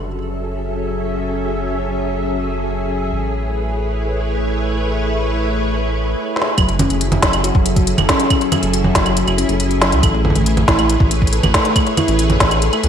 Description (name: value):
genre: IDM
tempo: 139 BPM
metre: 4/4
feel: straight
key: F# minor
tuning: A4 = 438 Hz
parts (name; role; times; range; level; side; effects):
- soft string machine; sustained chords; 0.0-12.9 s; F#3 to E5; -21 LUFS; equal; ensemble chorus
- rubbery square bass; bass; 0.0-12.9 s; F#1 to C#2; -20 LUFS; equal; none
- organic electronic drum kit; drums; 6.4-12.9 s; claves, congas, hi-hat, snare drum; -17 LUFS; right 1 dB; gated reverb, ping-pong delay
- harp-like synth pluck; arpeggios; 6.6-12.8 s; F#3 to A4; -21 LUFS; left 1 dB; chorus, digital delay
- electronic kick drum; drums; 6.6-12.5 s; none; -17 LUFS; equal; none
room: moderate lush hall reverb, RT60 1.8 s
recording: bright 1980s-style digital production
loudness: -14 LUFS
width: side -8 dB against mid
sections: 0.0-6.6 A section; 6.6-12.9 B section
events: drum fill 6.4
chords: 0.0 F#m7; 3.1 Amaj7; 6.6 F#m7; 10.0 Amaj7